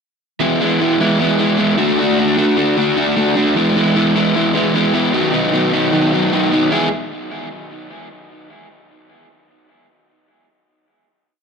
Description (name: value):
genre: punk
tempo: 152 BPM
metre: 4/4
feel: straight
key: E major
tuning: A4 = 441 Hz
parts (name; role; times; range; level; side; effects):
- crunchy overdriven guitar; solo; 0.4-6.9 s; B2 to G#4; -14 LUFS; equal; tape echo
room: little or no reverb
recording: live gig heard through the venue's PA, club reverb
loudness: -13 LUFS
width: side -6 dB against mid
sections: 0.4-6.7 verse; 6.7-8.3 final chord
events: none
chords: 0.4 E; 1.8 D; 3.6 E; 5.1 B; 6.7 E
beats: | 0.40 0.79 1.19 1.58 | 1.98 2.37 2.77 3.16 | 3.56 3.95 4.34 4.74 | 5.13 5.52 5.92 6.31 | 6.71